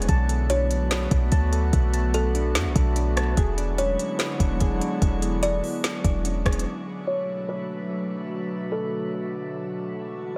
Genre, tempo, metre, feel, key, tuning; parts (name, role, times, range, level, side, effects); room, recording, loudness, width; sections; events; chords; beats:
hip hop, atmospheric cloud-rap; 146 BPM; 4/4; half-time; B dorian; A4 = 439 Hz
warbly tape-like pad; sustained chords; 0.0-10.4 s; B2 to F#4; -33 LUFS; equal; chorus, built-in reverb, sidechain pumping, low-pass filter
soft electric-piano-like synth keys; arpeggios; 0.0-6.7 s; B3 to A5; -37 LUFS; equal; chorus, digital delay
warm 808-style bass; bass; 0.0-6.7 s; E1 to F#2; -27 LUFS; equal
smooth R&B drum kit; drums; 0.0-6.7 s; hi-hat, kick drum, rim click, snare drum; -27 LUFS; equal
drifting glass-harmonics texture; texture; 0.0-10.4 s; G#3 to C#6; -39 LUFS; equal; chorus, built-in reverb
kalimba; melody; 0.5-9.5 s; A4 to D5; -33 LUFS; equal; low-pass filter, digital delay
light reverb, digital ambience; -25 LUFS; mono
0.0-6.7 A section; 6.7-10.4 B section
0.1 Bm7; 3.4 E13; 6.7 Bm7
| 0.09 0.50 0.91 1.32 | 1.73 2.14 2.55 2.96 | 3.38 3.79 4.20 4.61 | 5.02 5.43 5.84 6.25 | 6.66 7.07 7.48 7.89 | 8.31 8.72 9.13 9.54 | 9.95 10.36